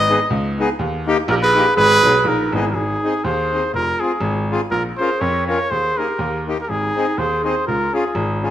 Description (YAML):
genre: alpine folk, alpine dance band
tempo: 122 BPM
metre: 2/4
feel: swing 55% on 8ths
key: Ab major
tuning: A4 = 442 Hz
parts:
  - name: warm trumpet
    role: melody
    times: 0.0-8.4 s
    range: G#4 to D#5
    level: -18 LUFS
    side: equal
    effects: none
  - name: dark clarinet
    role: second line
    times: 0.0-8.4 s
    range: Eb4 to B4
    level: -23 LUFS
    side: right 4 dB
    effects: none
  - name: clear baby grand piano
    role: bass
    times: 0.0-8.5 s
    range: F1 to F2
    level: -23 LUFS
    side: equal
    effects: none
  - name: accordion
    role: accompaniment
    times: 0.1-8.5 s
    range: A#3 to Bb4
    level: -23 LUFS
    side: left 3 dB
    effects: none
room: moderate recital hall reverb, RT60 1.7 s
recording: minimal, uncompressed stereo recording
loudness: -16 LUFS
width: side -11 dB against mid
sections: 0.0-2.8 A section; 2.8-8.5 B section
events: none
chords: 0.0 G#m; 0.8 D#; 1.8 G#m; 2.8 Ab; 3.8 Fm; 4.7 Bbm; 5.7 Ebsus4; 6.2 Eb; 6.7 Ab; 7.7 Db